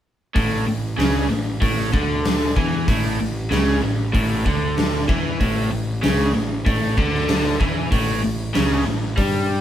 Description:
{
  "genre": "classic rock",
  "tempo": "95 BPM",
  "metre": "4/4",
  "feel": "straight",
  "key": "A major",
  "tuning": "A4 = 440 Hz",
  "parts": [
    { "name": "overdriven electric guitar", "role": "riff", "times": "0.3-9.6 s", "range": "A2 to G3", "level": "-22 LUFS", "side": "equal", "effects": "spring reverb" },
    { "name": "fuzz picked electric bass", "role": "bass", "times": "0.4-9.6 s", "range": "A1 to G2", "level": "-24 LUFS", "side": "equal", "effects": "overdrive" },
    { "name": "big rock drum kit", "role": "drums", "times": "0.4-9.3 s", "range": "hi-hat, kick drum, snare drum", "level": "-22 LUFS", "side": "equal", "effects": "none" }
  ],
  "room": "moderate small room reverb, RT60 0.5 s",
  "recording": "band playing live in one room",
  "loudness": "-18 LUFS",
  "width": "side -11 dB against mid",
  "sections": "0.4-9.6 A section",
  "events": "none",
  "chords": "0.4 A"
}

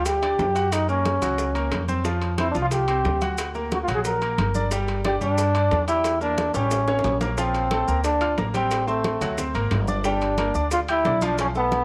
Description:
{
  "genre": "latin, salsa",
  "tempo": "180 BPM",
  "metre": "4/4",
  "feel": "straight",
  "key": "unclear",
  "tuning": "A4 = 440 Hz",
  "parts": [
    { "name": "bright trombone", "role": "melody", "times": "0.0-11.8 s", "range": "A3 to A#4", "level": "-26 LUFS", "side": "equal", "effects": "slapback echo" },
    { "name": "bright grand piano", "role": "accompaniment", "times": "0.0-11.8 s", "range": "F3 to G6", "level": "-31 LUFS", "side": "equal", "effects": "none" },
    { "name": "upright bass", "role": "bass", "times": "0.0-11.8 s", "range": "G1 to G2", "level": "-29 LUFS", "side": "equal", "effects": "none" },
    { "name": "bongos", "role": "percussion", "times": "0.1-11.8 s", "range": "none", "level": "-37 LUFS", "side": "equal", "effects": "none" },
    { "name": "congas", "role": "percussion", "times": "0.1-11.8 s", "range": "none", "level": "-35 LUFS", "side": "equal", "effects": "none" },
    { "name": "maracas", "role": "percussion", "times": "0.1-11.8 s", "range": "none", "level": "-42 LUFS", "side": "equal", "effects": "none" },
    { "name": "timbales", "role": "percussion", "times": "0.1-11.8 s", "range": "none", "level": "-38 LUFS", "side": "equal", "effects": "none" }
  ],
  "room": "light reverb, studio reverb",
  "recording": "none",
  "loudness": "-23 LUFS",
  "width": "mono",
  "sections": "0.0-7.4 A section; 7.4-11.8 B section",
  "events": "drum fill 6.5-7.4",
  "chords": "0.0 G5; 0.7 F#; 2.1 Fsus2; 3.4 Daug; 4.7 G5; 6.0 Em7b5; 6.7 A7b9; 7.4 Bbmaj9; 8.7 Am7; 9.4 Gmadd11; 10.0 Gm7"
}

